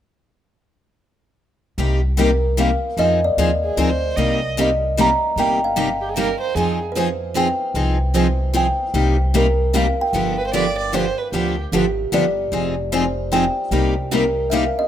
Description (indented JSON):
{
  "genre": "acoustic string swing (jazz manouche)",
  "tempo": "151 BPM",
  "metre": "3/4",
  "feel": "swing 63% on 8ths",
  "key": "C minor",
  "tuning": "A4 = 440 Hz",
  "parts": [
    { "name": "picked steel-string acoustic guitar", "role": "accompaniment", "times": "1.8-14.6 s", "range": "C3 to Ab4", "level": "-23 LUFS", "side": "left 7 dB", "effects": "plate reverb" },
    { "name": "picked steel-string acoustic guitar", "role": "accompaniment", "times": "1.8-14.6 s", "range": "C3 to Ab4", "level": "-25 LUFS", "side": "right 7 dB", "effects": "plate reverb" },
    { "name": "upright bass", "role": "bass", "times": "1.8-14.7 s", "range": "F1 to F2", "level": "-22 LUFS", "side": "equal", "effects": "none" },
    { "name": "kalimba", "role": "melody", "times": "2.2-14.9 s", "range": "G4 to Bb5", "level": "-21 LUFS", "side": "equal", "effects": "plate reverb" },
    { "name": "dark violin", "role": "second line", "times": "3.6-6.8, 10.4-11.6 s", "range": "G4 to Eb5", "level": "-24 LUFS", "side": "right 5 dB", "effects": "plate reverb" }
  ],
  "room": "moderate small room reverb, RT60 0.5 s",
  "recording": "rough home demo mix",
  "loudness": "-17 LUFS",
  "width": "side -10 dB against mid",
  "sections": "1.8-14.9 A section",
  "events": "none",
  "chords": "1.8 Cm7; 3.0 Fm7; 4.2 Cm7; 6.6 Fm9; 8.9 Cm7; 10.1 G7; 12.5 Fm9; 13.7 Cm7"
}